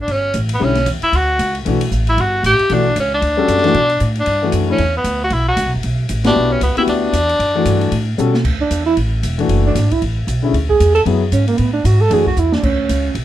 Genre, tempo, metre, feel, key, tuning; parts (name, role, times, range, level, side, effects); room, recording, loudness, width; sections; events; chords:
modal jazz; 230 BPM; 4/4; swing 59% on 8ths; G lydian, D lydian from 8.4 s; A4 = 440 Hz
clear tenor saxophone; melody; 0.0-8.2 s; B3 to G4; -16 LUFS; equal
upright bass; bass; 0.0-13.2 s; E1 to B2; -18 LUFS; equal
open jazz drum kit; drums; 0.1-13.2 s; crash cymbal, hi-hat, kick drum, ride cymbal, snare drum; -26 LUFS; equal
warm upright piano; accompaniment; 0.6-12.3 s; D3 to A4; -18 LUFS; left 4 dB
breathy tenor saxophone; second line; 8.6-13.2 s; Bb3 to A4; -16 LUFS; right 5 dB
light reverb; -13 LUFS; side -12 dB against mid
0.1-8.4 A section; 8.4-13.2 B section
band accent 6.2; drum fill 8.2, 12.4; tenor saxophone solo 8.4-13.2
0.1 Gmaj9#11; 4.3 Bm; 8.4 Dadd9; 12.6 N.C.